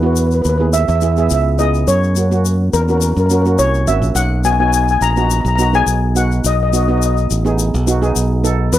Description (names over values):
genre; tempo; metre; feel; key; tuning
calypso; 105 BPM; 4/4; swing 53% on 16ths; B major; A4 = 440 Hz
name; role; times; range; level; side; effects
steel pan; melody; 0.0-8.8 s; A#4 to A#5; -17 LUFS; left 2 dB; none
steel pan; accompaniment; 0.0-8.7 s; A#3 to A4; -20 LUFS; right 4 dB; none
modern bright fingered electric bass; bass; 0.0-8.8 s; G#1 to F#2; -15 LUFS; equal; none
egg shaker; percussion; 0.2-8.8 s; none; -25 LUFS; left 14 dB; none
room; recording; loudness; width
light reverb; dry, close 1970s-style studio recording; -12 LUFS; side -12 dB against mid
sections
0.0-8.8 A section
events
none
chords
0.0 Emaj7; 1.9 F#7; 4.2 Bmaj7; 6.4 B7